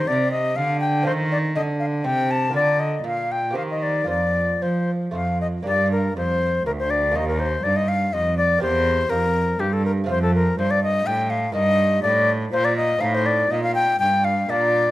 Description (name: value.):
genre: classical, baroque-style sonata movement with continuo.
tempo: 122 BPM.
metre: 3/4.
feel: rubato.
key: unclear.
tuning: A4 = 440 Hz.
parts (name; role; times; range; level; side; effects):
bright baroque flute; melody; 0.0-14.9 s; G4 to A5; -21 LUFS; left 2 dB; none.
lute; accompaniment; 0.0-14.9 s; D2 to C5; -30 LUFS; right 3 dB; none.
rich cello; bass; 0.0-14.9 s; D2 to F3; -23 LUFS; right 1 dB; none.
room: light reverb.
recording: close, detailed microphones.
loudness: -19 LUFS.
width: side -16 dB against mid.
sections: 0.0-5.7 A section; 5.7-14.9 B section.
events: none.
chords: 0.0 Cm; 1.1 F7; 2.5 Bb/D; 3.6 Cm7/Eb; 4.1 Fsus4; 5.1 F; 5.7 Gm; 7.1 Ebmaj9; 8.6 C7/E; 10.1 F; 11.5 Eb/G; 13.0 Cm13.